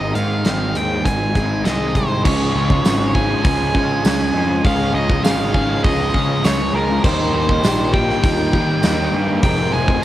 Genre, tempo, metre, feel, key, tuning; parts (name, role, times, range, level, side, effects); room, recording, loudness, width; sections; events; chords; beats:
rock, shoegaze and dream pop; 100 BPM; 4/4; straight; A4 = 440 Hz
octave-fuzz lead guitar; melody; 0.0-10.0 s; Bb4 to Ab5; -22 LUFS; equal; distortion, cassette tape, tape echo
picked twelve-string acoustic guitar; arpeggios; 0.0-2.3, 7.0-10.0 s; F4 to Bb4; -28 LUFS; left 4 dB; ensemble chorus, tape echo
crunchy overdriven guitar; riff; 0.0-10.0 s; F2 to Eb4; -25 LUFS; right 7 dB; reverse reverb
thick fuzz guitar; riff; 0.0-10.0 s; F2 to Eb4; -24 LUFS; left 6 dB; distortion, ensemble chorus
fuzz picked electric bass; bass; 0.0-10.0 s; F1 to Eb3; -22 LUFS; equal; overdrive
huge arena drum kit; drums; 0.2-10.0 s; crash cymbal, hi-hat, kick drum, snare drum; -20 LUFS; equal; cassette tape
biting overdriven guitar; riff; 2.2-10.0 s; F2 to Ab4; -24 LUFS; right 1 dB
tambourine; percussion; 2.9-9.0 s; -33 LUFS; right 8 dB
light reverb; home recording on cassette; -15 LUFS; side -13 dB against mid
0.0-2.3 A section; 2.3-10.0 B section
0.0 Abadd9; 2.3 Db; 7.0 Eb6; 9.4 Fm
0.46 1.06 1.66 | 2.26 2.85 3.45 4.05 | 4.65 5.25 5.85 6.45 | 7.04 7.64 8.24 8.84 | 9.44 10.04